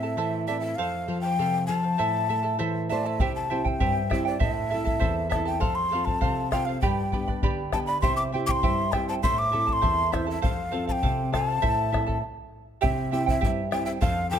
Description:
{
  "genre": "andean folk, Andean ensemble",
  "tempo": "100 BPM",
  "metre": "2/4",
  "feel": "straight",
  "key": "unclear",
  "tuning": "A4 = 441 Hz",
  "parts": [
    { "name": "breathy large quena", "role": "melody", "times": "0.0-14.4 s", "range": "C5 to D6", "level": "-28 LUFS", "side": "left 2 dB", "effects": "none" },
    { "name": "charango", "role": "accompaniment", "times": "0.0-14.4 s", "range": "E4 to B5", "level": "-30 LUFS", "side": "right 8 dB", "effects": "none" },
    { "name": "nylon-string guitar", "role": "accompaniment", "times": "0.0-14.4 s", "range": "E2 to E5", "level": "-29 LUFS", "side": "left 1 dB", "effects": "none" },
    { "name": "bombo", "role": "percussion", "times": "3.2-14.2 s", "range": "none", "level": "-28 LUFS", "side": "left 1 dB", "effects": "none" }
  ],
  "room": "moderate recital hall reverb, RT60 1.7 s",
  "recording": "close, detailed microphones",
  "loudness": "-23 LUFS",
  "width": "side -9 dB against mid",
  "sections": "0.0-3.2 A section; 3.2-12.8 A section; 12.8-14.4 B section",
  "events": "nylon-string guitar fill 2.3-3.2; stop 12.2-12.8",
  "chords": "0.0 Am; 0.8 F; 2.0 Am; 3.2 C; 4.4 Am; 5.6 F; 6.8 G; 8.0 C; 9.2 Am; 10.4 F; 11.6 Am; 12.8 C"
}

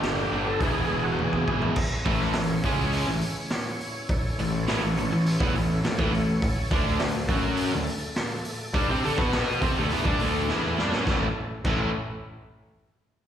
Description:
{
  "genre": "classic rock",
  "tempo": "103 BPM",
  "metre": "4/4",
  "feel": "straight",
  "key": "A mixolydian",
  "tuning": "A4 = 440 Hz",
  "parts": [
    { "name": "overdriven tonewheel organ", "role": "melody", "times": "0.0-1.6 s", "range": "F#4 to A4", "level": "-30 LUFS", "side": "equal", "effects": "slow rotary speaker, chorus vibrato, slapback echo" },
    { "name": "tonewheel organ", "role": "sustained chords", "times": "0.0-11.5 s", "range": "E3 to C#5", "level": "-37 LUFS", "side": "equal", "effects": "slow rotary speaker, overdrive, chorus vibrato" },
    { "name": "crunchy overdriven guitar", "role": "riff", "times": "0.0-11.9 s", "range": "E2 to B4", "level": "-30 LUFS", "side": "left 9 dB", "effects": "spring reverb, slapback echo" },
    { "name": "distorted electric guitar", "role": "riff", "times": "0.0-11.9 s", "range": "E2 to B4", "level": "-33 LUFS", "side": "equal", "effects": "overdrive, slapback echo" },
    { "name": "overdriven semi-hollow guitar", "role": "riff", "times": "0.0-11.9 s", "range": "E2 to B4", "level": "-30 LUFS", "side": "right 10 dB", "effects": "none" },
    { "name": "fuzz picked electric bass", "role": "bass", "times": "0.0-11.9 s", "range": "E1 to D3", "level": "-29 LUFS", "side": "equal", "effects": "overdrive" },
    { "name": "raw garage drum kit", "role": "drums", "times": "0.0-11.8 s", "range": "crash cymbal, hi-hat, kick drum, snare drum, toms", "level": "-28 LUFS", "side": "equal", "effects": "none" }
  ],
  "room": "light reverb",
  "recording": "live gig heard through the venue's PA, recital hall reverb",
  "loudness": "-23 LUFS",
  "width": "side -10 dB against mid",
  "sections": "0.0-1.8 A section; 1.8-11.1 B section; 11.1-13.3 C section",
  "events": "drum fill 1.2-1.8, 10.5-11.1",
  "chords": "0.0 G; 0.6 E; 1.8 A; 6.7 D5; 11.1 A"
}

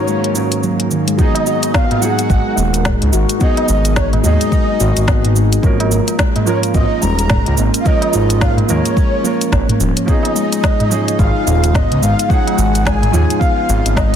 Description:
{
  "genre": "organic downtempo",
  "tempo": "108 BPM",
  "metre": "4/4",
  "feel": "swing 60% on 16ths",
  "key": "unclear",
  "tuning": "A4 = 440 Hz",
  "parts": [
    { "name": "breathy flute-like synth lead", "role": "melody", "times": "0.0-14.2 s", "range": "C#5 to A#5", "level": "-21 LUFS", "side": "equal", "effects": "ensemble chorus, tape echo" },
    { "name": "felt-muted upright piano", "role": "accompaniment", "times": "0.0-14.2 s", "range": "G#2 to A#4", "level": "-22 LUFS", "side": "right 4 dB", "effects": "sidechain pumping, digital delay" },
    { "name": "warbly tape-like pad", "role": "sustained chords", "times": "0.0-14.2 s", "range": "G#2 to E#5", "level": "-24 LUFS", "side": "left 1 dB", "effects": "chorus, built-in reverb, sidechain pumping" },
    { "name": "handpan", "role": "arpeggios", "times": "0.1-14.1 s", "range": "D#3 to G#4", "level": "-21 LUFS", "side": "left 2 dB", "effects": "digital delay" },
    { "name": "organic electronic drum kit", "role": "drums", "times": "0.1-14.2 s", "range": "cabasa, hi-hat, snare drum", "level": "-21 LUFS", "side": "equal", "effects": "overdrive" },
    { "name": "electronic kick drum", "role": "drums", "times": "1.2-14.1 s", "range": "none", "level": "-16 LUFS", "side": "equal", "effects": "none" },
    { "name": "tabla", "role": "percussion", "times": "1.3-14.2 s", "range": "none", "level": "-22 LUFS", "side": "right 1 dB", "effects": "none" },
    { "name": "smooth synth bass", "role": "bass", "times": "2.3-14.2 s", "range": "D#1 to D#2", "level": "-16 LUFS", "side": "equal", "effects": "sidechain pumping" }
  ],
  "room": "light reverb",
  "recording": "dense, heavily limited modern master",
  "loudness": "-12 LUFS",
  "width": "side -9 dB against mid",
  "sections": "0.0-1.2 A section; 1.2-14.2 B section",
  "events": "filter sweep on ambient pad 0.0-1.2",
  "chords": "0.0 D#m7/G#; 1.2 G#m7; 5.6 A#m; 10.1 C#add9"
}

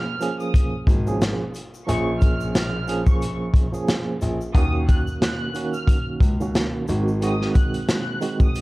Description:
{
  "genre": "hip hop, boom-bap hip-hop",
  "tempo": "90 BPM",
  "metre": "4/4",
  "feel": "swing 57% on 16ths",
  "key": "Bb minor",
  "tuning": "A4 = 440 Hz",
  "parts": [
    { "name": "warm studio violin section", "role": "melody", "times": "0.0-8.6 s", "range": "Db6 to Gb6", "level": "-32 LUFS", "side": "right 1 dB", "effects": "high-pass filter, low-pass filter" },
    { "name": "mellow tine electric piano", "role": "accompaniment", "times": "0.0-8.6 s", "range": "Eb3 to Ab4", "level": "-26 LUFS", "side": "right 3 dB", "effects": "medium tremolo, high-pass filter, low-pass filter" },
    { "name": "crunchy breakbeat drum kit", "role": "drums", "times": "0.2-8.6 s", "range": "hi-hat, kick drum, snare drum", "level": "-20 LUFS", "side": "equal", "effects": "none" },
    { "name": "egg shaker", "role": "percussion", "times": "0.2-8.6 s", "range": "none", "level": "-49 LUFS", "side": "left 5 dB", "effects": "none" },
    { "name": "dark grand piano", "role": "bass", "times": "0.9-7.4 s", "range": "Ab1 to Eb2", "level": "-26 LUFS", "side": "left 1 dB", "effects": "none" }
  ],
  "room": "small room ambience",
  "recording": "cassette tape",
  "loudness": "-19 LUFS",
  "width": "side -20 dB against mid",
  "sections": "0.0-8.6 A section",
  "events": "none",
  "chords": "0.0 Bbm7; 4.5 Ebm7; 6.9 Ab7"
}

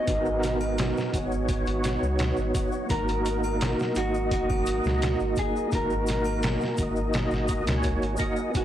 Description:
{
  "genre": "trip hop",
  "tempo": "85 BPM",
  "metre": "4/4",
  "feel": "straight",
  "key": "unclear",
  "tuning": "A4 = 440 Hz",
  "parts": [
    { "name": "electric guitar through a small old amp", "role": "melody", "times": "0.0-8.6 s", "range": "F#4 to D#5", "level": "-31 LUFS", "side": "equal", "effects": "vintage 12-bit sampler grit, tape echo" },
    { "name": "percussive tonewheel organ", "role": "accompaniment", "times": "0.0-8.6 s", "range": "A#3 to D#5", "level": "-28 LUFS", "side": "equal", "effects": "chorus vibrato, slow rotary speaker, tremolo, tape echo" },
    { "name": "deep dark ambient pad", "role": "sustained chords", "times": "0.0-8.6 s", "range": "B3 to A#5", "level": "-34 LUFS", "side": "right 3 dB", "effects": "chorus, built-in reverb" },
    { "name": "soft dub sub bass", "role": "bass", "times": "0.1-8.6 s", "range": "G#1 to C#2", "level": "-30 LUFS", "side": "equal", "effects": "none" },
    { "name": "trip hop sampler-style drum kit", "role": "drums", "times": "0.1-8.6 s", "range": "hi-hat, kick drum, snare drum", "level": "-29 LUFS", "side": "equal", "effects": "small room ambience" },
    { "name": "tube shaker and triangle", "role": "percussion", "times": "0.1-8.6 s", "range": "none", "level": "-46 LUFS", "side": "left 4 dB", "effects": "none" },
    { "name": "bowed-like drone", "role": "texture", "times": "8.5-8.6 s", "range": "none", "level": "barely audible", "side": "none", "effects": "none" }
  ],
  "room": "light reverb",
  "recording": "blown-out, overdriven recording, vinyl crackle, overdrive",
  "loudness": "-24 LUFS",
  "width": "side -11 dB against mid",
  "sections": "0.0-8.6 A section",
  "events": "none",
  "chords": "0.0 G#m7; 2.9 D#m/G#"
}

